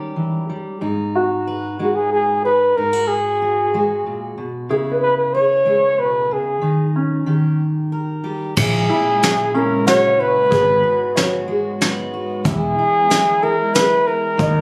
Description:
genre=acoustic folk-pop ballad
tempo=93 BPM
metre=3/4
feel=straight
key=G# minor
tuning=A4 = 436 Hz
part: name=fingerpicked steel-string acoustic guitar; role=accompaniment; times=0.0-14.6 s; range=G#2 to B4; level=-25 LUFS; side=equal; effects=none
part: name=felt-muted upright piano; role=arpeggios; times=1.2-14.6 s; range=C#4 to D#5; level=-26 LUFS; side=equal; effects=none
part: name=breathy flugelhorn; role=melody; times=1.8-14.6 s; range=F#4 to C#5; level=-18 LUFS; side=equal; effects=none
part: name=hollow soft pad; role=sustained chords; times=8.6-14.6 s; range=A#2 to F#4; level=-31 LUFS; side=equal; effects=ensemble chorus
part: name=mellow fretless electric bass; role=bass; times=8.6-14.6 s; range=E1 to D#2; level=-24 LUFS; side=equal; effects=none
part: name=soft brush drum kit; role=drums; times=8.6-14.5 s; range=crash cymbal, hi-hat, kick drum, snare drum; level=-22 LUFS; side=equal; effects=none
room=light reverb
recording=recorded on a phone in the room, studio reverb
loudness=-18 LUFS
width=mono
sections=0.0-8.6 A section; 8.6-14.6 B section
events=none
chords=0.0 D#7; 0.8 G#m; 2.8 G#m9; 4.7 C#m; 6.6 D#sus4; 7.3 D#; 8.6 A#m7b5; 10.5 G#m7; 12.5 E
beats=0.16 | 0.82 1.47 2.12 | 2.77 3.41 4.05 | 4.70 5.34 5.99 | 6.63 7.28 7.93 | 8.58 9.23 9.88 | 10.52 11.17 11.81 | 12.45 13.10 13.74 | 14.39

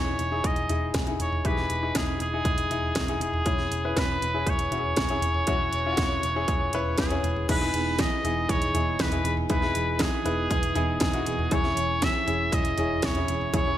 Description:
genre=piano-driven pop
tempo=119 BPM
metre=4/4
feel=straight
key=E major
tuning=A4 = 440 Hz
part: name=clear trumpet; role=melody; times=0.0-13.8 s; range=G#4 to E5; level=-28 LUFS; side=right 1 dB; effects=none
part: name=clear concert grand piano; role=accompaniment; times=0.0-13.8 s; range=E3 to B4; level=-30 LUFS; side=left 4 dB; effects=none
part: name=vintage muted picked electric bass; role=bass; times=0.0-13.7 s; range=E1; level=-31 LUFS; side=equal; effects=none
part: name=house drum kit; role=drums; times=0.2-13.7 s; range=crash cymbal, hi-hat, kick drum, snare drum, toms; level=-28 LUFS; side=right 1 dB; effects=overdrive, gated reverb
part: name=picked steel-string acoustic guitar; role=riff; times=7.5-13.8 s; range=E3 to G#4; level=-33 LUFS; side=right 7 dB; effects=lush chorus
room=light reverb, digital ambience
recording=bright 1980s-style digital production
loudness=-23 LUFS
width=side -12 dB against mid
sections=0.0-7.5 A section; 7.5-13.8 B section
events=none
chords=0.0 Emaj7; 3.5 C#m/E; 7.5 Emaj7; 11.5 C#m/E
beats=0.45 0.95 | 1.45 1.95 2.46 2.96 | 3.46 3.97 4.47 4.97 | 5.48 5.98 6.48 6.99 | 7.49 7.99 8.50 9.00 | 9.51 10.01 10.51 11.02 | 11.52 12.02 12.53 13.03 | 13.53

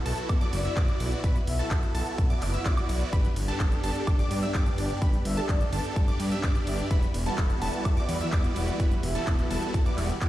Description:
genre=EDM, festival progressive house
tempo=127 BPM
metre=4/4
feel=straight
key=E minor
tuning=A4 = 440 Hz
part: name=lush unison pad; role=sustained chords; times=0.0-10.3 s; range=E3 to B4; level=-38 LUFS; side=equal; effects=chorus, sidechain pumping
part: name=wide unison pluck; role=arpeggios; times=0.0-10.3 s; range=A5 to E6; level=-38 LUFS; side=right 1 dB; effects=sidechain pumping, dub echo
part: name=supersaw chords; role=riff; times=0.0-10.3 s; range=G3 to E5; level=-33 LUFS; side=right 1 dB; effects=phaser, cassette tape, sidechain pumping, dub echo
part: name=fat analog bass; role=bass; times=0.1-10.3 s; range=E1 to G2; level=-30 LUFS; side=equal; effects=sidechain pumping
part: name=big-room dance drum kit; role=drums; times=0.1-10.3 s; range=handclaps, hi-hat, ride cymbal, woodblock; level=-38 LUFS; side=equal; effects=none
part: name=electronic kick drum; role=drums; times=0.3-10.3 s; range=none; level=-25 LUFS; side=equal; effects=none
part: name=breathy flute-like synth lead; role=melody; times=0.5-9.2 s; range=D5 to E5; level=-40 LUFS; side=left 2 dB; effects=lush chorus, dub echo
room=little or no reverb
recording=played on a big sound system in a bare room, stone room reverb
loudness=-24 LUFS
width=side -14 dB against mid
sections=0.0-10.3 A section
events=none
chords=0.0 Bsus4; 3.1 G; 6.9 Emadd9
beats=0.29 0.77 | 1.24 1.71 2.18 2.66 | 3.13 3.60 4.07 4.55 | 5.02 5.49 5.96 6.43 | 6.91 7.38 7.85 8.32 | 8.80 9.27 9.74 10.21

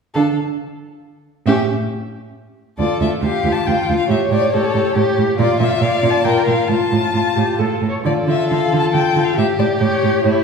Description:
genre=quick classical-period movement for string quartet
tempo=137 BPM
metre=3/4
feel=rubato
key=D minor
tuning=A4 = 440 Hz
part: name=warm violin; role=melody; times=0.1-10.4 s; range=C#5 to A5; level=-21 LUFS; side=left 5 dB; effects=none
part: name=warm violin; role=second line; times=0.1-10.4 s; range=E4 to D5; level=-22 LUFS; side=left 1 dB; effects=none
part: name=dark viola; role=accompaniment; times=0.1-10.4 s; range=C#4 to C#5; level=-20 LUFS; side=left 1 dB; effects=none
part: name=rich cello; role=bass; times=0.1-10.3 s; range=D2 to D3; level=-19 LUFS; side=right 4 dB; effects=none
room=wet scoring stage reverb, RT60 1.7 s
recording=heard from further back in the room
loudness=-14 LUFS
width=side -5 dB against mid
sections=0.1-2.8 A section; 2.8-10.4 B section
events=none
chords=0.1 N.C.; 1.5 A; 2.8 Dm; 4.1 A7; 5.4 Bb; 6.7 Fadd9/A; 7.6 A; 8.1 Dm; 9.4 A7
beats=| 0.14 0.58 1.02 | 1.46 1.89 2.33 | 2.79 3.23 3.67 | 4.10 4.54 4.96 | 5.39 5.81 6.25 | 6.69 7.14 7.60 | 8.05 8.50 8.94 | 9.37 9.81 10.24

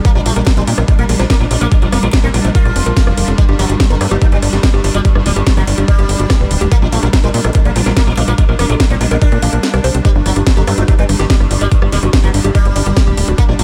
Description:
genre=psychedelic trance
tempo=144 BPM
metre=4/4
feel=straight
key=unclear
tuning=A4 = 440 Hz
part: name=sitar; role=melody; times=0.0-13.6 s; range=G2 to F4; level=-24 LUFS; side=equal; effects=phaser, sidechain pumping, diffuse ambient delay
part: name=pulsing gated texture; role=sustained chords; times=0.0-13.6 s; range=G3 to D4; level=-24 LUFS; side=equal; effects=chorus, built-in reverb, sidechain pumping
part: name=woody wave-folded pluck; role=riff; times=0.0-13.5 s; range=F#4 to F5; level=-26 LUFS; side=equal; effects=chorus, cassette tape, sidechain pumping, delay
part: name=electronic kick drum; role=drums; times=0.0-13.5 s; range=none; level=-14 LUFS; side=equal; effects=overdrive, small room ambience
part: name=techno drum kit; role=drums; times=0.0-13.6 s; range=hi-hat, rim click, snare drum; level=-23 LUFS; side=equal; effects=small room ambience
part: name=tight sequencer bass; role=bass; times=0.2-13.6 s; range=D1 to Bb2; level=-17 LUFS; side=equal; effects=none
part: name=formant-sweep wobble bass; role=second line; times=4.0-6.3, 10.7-11.6 s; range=none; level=barely audible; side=none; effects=none
room=light reverb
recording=none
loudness=-12 LUFS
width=mono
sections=0.0-13.6 A section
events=kick drops out 9.6-10.0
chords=0.0 Bb5; 3.4 G5; 6.7 Bb5; 10.0 G5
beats=| 0.05 0.47 0.88 1.30 | 1.72 2.13 2.55 2.97 | 3.38 3.80 4.22 4.63 | 5.05 5.47 5.88 6.30 | 6.72 7.13 7.55 7.97 | 8.38 8.80 9.22 9.63 | 10.05 10.47 10.88 11.30 | 11.72 12.13 12.55 12.97 | 13.38

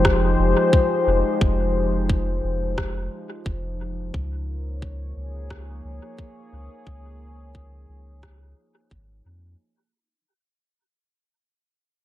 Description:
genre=ambient dub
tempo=88 BPM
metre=4/4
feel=swing 54% on 16ths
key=unclear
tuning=A4 = 440 Hz
part: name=warm analog pad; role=sustained chords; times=0.0-9.6 s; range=F3 to Db5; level=-23 LUFS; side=left 2 dB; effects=chorus
part: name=soft dub sub bass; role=bass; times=0.0-9.6 s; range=F1 to F2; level=-26 LUFS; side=equal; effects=none
part: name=electronic kick drum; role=drums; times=0.0-9.1 s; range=none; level=-21 LUFS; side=equal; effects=none
part: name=electronic rim click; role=drums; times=0.0-8.4 s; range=none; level=-28 LUFS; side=equal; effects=dub echo
room=moderate spring reverb, RT60 1.6 s, digital ambience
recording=none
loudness=-21 LUFS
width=side -13 dB against mid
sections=0.0-9.6 A section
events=fade-out 0.0-9.6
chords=0.0 Fm9; 4.1 Db69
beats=0.05 0.73 | 1.41 2.09 2.77 3.46 | 4.14 4.82 5.50 6.18 | 6.87 7.55 8.23 8.91

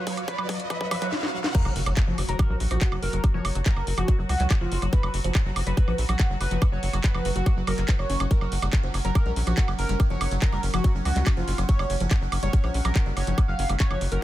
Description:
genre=psychedelic trance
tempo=142 BPM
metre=4/4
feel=straight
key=F# major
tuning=A4 = 440 Hz
part: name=overdriven synth lead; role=melody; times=0.0-14.2 s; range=E#4 to E#5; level=-33 LUFS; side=right 1 dB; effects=distortion, chorus, phaser, sidechain pumping, digital delay
part: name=pulsing gated texture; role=sustained chords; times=0.0-14.2 s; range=F#3 to F#4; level=-36 LUFS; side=right 2 dB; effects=chorus, built-in reverb, sidechain pumping
part: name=woody wave-folded pluck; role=riff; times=0.0-14.2 s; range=E#3 to C#4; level=-34 LUFS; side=moving between left 6 dB and right 5 dB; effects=chorus, auto-pan, sidechain pumping, digital delay
part: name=riser and impact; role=sound effects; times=0.0-3.2 s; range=none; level=-33 LUFS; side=equal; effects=none
part: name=deep dark ambient pad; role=texture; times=0.0-14.2 s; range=F#4 to F#5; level=-39 LUFS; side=right 3 dB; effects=chorus, built-in reverb, sidechain pumping
part: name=drum and bass drum kit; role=drums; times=0.1-14.2 s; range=crash cymbal, handclaps, hi-hat, snare drum, woodblock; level=-32 LUFS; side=right 2 dB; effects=none
part: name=electronic kick drum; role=drums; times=0.1-13.9 s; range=none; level=-21 LUFS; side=equal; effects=high-pass filter on kick
part: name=tight sequencer bass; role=bass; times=1.7-14.2 s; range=F#1 to C#2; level=-26 LUFS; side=equal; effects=none
room=little or no reverb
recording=none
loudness=-22 LUFS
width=side -14 dB against mid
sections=0.0-1.5 A section; 1.5-14.2 B section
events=build-up 0.0-1.5; drum fill 0.0-1.1, 1.1-1.5; riser 0.0-1.5; filter sweep on synth texture 0.0-1.5; drop 1.5-14.2; impact 1.5-3.2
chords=0.0 F#5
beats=0.28 0.70 1.12 | 1.55 1.97 2.39 2.81 | 3.24 3.66 4.08 4.50 | 4.93 5.35 5.77 6.20 | 6.62 7.04 7.46 7.88 | 8.31 8.73 9.15 9.57 | 10.00 10.42 10.84 11.27 | 11.69 12.11 12.53 12.96 | 13.38 13.80 14.22

